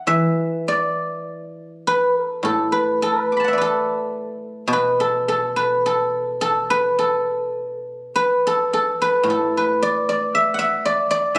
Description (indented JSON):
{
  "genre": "chinese traditional, Chinese solo plucked strings",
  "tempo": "50-59 BPM",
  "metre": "2/4",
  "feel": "rubato",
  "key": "A zhi mode",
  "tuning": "A4 = 439 Hz",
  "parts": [
    { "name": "guzheng", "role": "solo", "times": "0.0-11.4 s", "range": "A2 to D6", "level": "-20 LUFS", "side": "equal", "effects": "none" }
  ],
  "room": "light reverb",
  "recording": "recorded on a phone in the room, club reverb",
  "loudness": "-20 LUFS",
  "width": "mono",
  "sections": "0.0-9.3 A section; 9.3-11.4 B section",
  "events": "none",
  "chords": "none",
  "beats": "| 0.08 1.28 | 2.45 3.59 | 4.70 5.81 | 6.95 8.11 | 9.25 10.32 | 11.36"
}